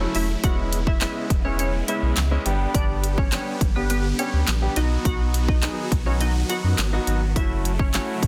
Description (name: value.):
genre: dance-pop.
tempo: 104 BPM.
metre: 4/4.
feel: straight.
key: unclear.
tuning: A4 = 436 Hz.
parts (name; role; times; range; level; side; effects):
clear concert grand piano; accompaniment; 0.0-8.2 s; F#3 to G#4; -32 LUFS; equal; sidechain pumping.
supersaw chords; sustained chords; 0.0-8.3 s; C#3 to G4; -34 LUFS; equal; phaser, sidechain pumping.
warm sub bass; bass; 0.0-8.3 s; E1 to F#2; -26 LUFS; equal; sidechain pumping.
pop drum kit; drums; 0.1-8.3 s; handclaps, hi-hat, kick drum, snare drum; -26 LUFS; equal; none.
glassy wavetable pluck; melody; 0.2-8.1 s; B3 to F#5; -33 LUFS; equal; chorus, sidechain pumping, delay.
room: digital ambience.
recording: dense, heavily limited modern master.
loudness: -22 LUFS.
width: mono.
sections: 0.0-8.3 A section.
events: none.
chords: 0.4 E6; 2.5 G; 4.8 B; 7.4 F#m7.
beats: | 0.44 1.01 1.59 2.17 | 2.75 3.32 3.90 4.48 | 5.05 5.63 6.21 6.78 | 7.36 7.94.